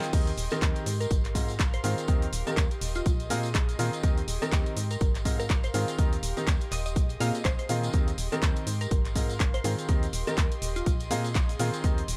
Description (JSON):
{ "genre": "piano house", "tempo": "123 BPM", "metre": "4/4", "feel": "swing 58% on 16ths", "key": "Eb major", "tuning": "A4 = 441 Hz", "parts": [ { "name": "clear baby grand piano", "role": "riff", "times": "0.0-12.0 s", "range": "Ab2 to G5", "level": "-35 LUFS", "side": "equal", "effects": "sidechain pumping, tape echo" }, { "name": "punchy analog drum machine", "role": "drums", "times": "0.0-12.2 s", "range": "crash cymbal, handclaps, hi-hat, shaker", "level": "-37 LUFS", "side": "equal", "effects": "none" }, { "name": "tambourine", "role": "percussion", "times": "0.0-12.1 s", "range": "none", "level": "-47 LUFS", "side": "equal", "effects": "none" }, { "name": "airy breathy pad", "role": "texture", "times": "0.0-12.2 s", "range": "G4 to C6", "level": "-42 LUFS", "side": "equal", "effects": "chorus, sidechain pumping" }, { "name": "organ-like FM bass", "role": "bass", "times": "0.1-12.2 s", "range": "Eb1 to Bb2", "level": "-34 LUFS", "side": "equal", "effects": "sidechain pumping" }, { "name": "electronic kick drum", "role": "drums", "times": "0.1-12.0 s", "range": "none", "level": "-28 LUFS", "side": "equal", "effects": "none" }, { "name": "glassy wavetable pluck", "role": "melody", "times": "0.5-10.9 s", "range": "F4 to F5", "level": "-40 LUFS", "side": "equal", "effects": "chorus, tape echo" } ], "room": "little or no reverb", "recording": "none", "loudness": "-28 LUFS", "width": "mono", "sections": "0.0-12.2 A section", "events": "none", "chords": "0.1 Eb6; 0.9 Ab69; 2.1 Eb6; 3.1 Bb9sus4; 4.0 Eb6; 4.8 Ab69; 6.0 Eb6; 7.0 Bb9sus4; 7.9 Eb6; 8.7 Ab69; 9.9 Eb6; 10.9 Bb9sus4" }